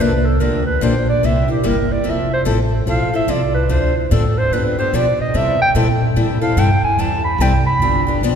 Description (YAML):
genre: acoustic string swing (jazz manouche)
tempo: 146 BPM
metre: 4/4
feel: swing 62% on 8ths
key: C major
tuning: A4 = 441 Hz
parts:
  - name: breathy clarinet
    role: melody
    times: 0.0-8.2 s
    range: E4 to B5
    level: -19 LUFS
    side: right 2 dB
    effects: none
  - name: picked steel-string acoustic guitar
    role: accompaniment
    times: 0.0-8.3 s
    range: C3 to A4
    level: -20 LUFS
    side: left 3 dB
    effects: none
  - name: upright bass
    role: bass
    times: 0.0-8.4 s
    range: F1 to C3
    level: -18 LUFS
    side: equal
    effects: none
room: wet church reverb, RT60 3.5 s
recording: recorded in a church or concert hall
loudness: -14 LUFS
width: side -7 dB against mid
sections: 0.0-8.4 A section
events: clarinet solo 0.0-8.4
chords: 0.4 Gm7; 1.2 C7; 2.1 Fmaj7; 3.7 Dm7; 4.5 G7; 5.3 C6; 7.8 G7